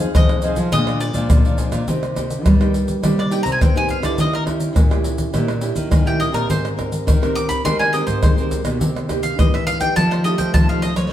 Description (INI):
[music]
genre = samba and choro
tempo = 104 BPM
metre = 4/4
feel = straight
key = C minor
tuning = A4 = 440 Hz
[part]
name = cavaquinho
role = accompaniment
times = 0.0-1.9 s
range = Eb4 to F5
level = -29 LUFS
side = right 1 dB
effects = none
[part]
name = nylon-string guitar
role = accompaniment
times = 0.0-11.1 s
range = F2 to Bb4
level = -24 LUFS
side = right 1 dB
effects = none
[part]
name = nylon-string guitar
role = bass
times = 0.0-11.1 s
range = F2 to C4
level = -22 LUFS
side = equal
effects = none
[part]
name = maracas, surdo, pandeiro and tamborim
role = percussion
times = 0.1-11.1 s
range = none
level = -18 LUFS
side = equal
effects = none
[part]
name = bowl-back mandolin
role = melody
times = 0.2-11.1 s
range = Bb4 to D6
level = -22 LUFS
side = equal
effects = none
[sound]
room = wet stone room reverb, RT60 1.2 s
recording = band playing live in one room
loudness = -16 LUFS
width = side -11 dB against mid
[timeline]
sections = 0.0-1.9 A section; 1.9-11.1 B section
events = mandolin solo 1.9-11.1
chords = 0.0 Fm7; 0.7 Bb7; 1.9 Cm7; 4.2 Eb7b9; 6.5 Abmaj9; 8.8 Cm7; 10.0 F9